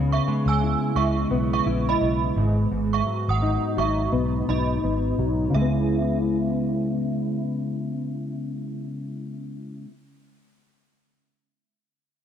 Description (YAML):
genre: indie pop, bedroom pop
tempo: 85 BPM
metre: 4/4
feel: swing 60% on 16ths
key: C# minor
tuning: A4 = 443 Hz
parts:
  - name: fingerpicked plugged-in steel-string acoustic guitar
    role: accompaniment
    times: 0.0-9.9 s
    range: G#2 to E4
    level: -24 LUFS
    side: left 1 dB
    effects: ensemble chorus, warbly pitch drift, low-pass filter
  - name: vintage muted fingered electric bass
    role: bass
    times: 0.0-9.8 s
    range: G#1 to C#2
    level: -26 LUFS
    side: equal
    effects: none
  - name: synth chime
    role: second line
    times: 0.1-7.6 s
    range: D#5 to E6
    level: -28 LUFS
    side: right 8 dB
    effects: ensemble chorus, analog chorus, analog delay
room: light reverb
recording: dark, warm production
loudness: -22 LUFS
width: side -9 dB against mid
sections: 0.0-5.5 A section; 5.5-8.4 B section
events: filter sweep on steel-string acoustic guitar 0.0-5.5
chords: 0.0 C#m7; 2.4 G#m7; 5.5 C#m7